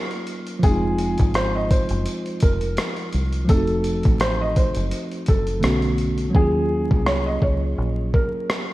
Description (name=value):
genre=lo-fi hip hop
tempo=84 BPM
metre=4/4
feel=swing 55% on 16ths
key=Eb dorian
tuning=A4 = 440 Hz
part: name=felt-muted upright piano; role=melody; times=0.0-8.7 s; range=Ab4 to Eb5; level=-27 LUFS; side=equal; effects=low-pass filter
part: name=mellow tine electric piano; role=accompaniment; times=0.0-8.7 s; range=D3 to Ab4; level=-25 LUFS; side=right 1 dB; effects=medium stereo tremolo, low-pass filter
part: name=boom bap sampler-style drum kit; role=drums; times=0.1-8.7 s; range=hi-hat, kick drum, rim click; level=-21 LUFS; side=equal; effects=none
part: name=deep dub fingered electric bass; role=bass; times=0.6-8.1 s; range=F1 to Eb2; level=-24 LUFS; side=equal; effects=none
room=light reverb, digital ambience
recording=vinyl crackle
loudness=-18 LUFS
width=side -17 dB against mid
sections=0.0-6.3 A section; 6.3-8.7 B section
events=hi-hats muted 6.3-8.7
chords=0.0 Ebm9; 0.6 Fm7; 3.5 F7b9; 5.6 Bm9; 6.3 Ebm11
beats=| 0.63 1.35 2.06 2.77 | 3.49 4.20 4.92 5.63 | 6.35 7.06 7.77 8.49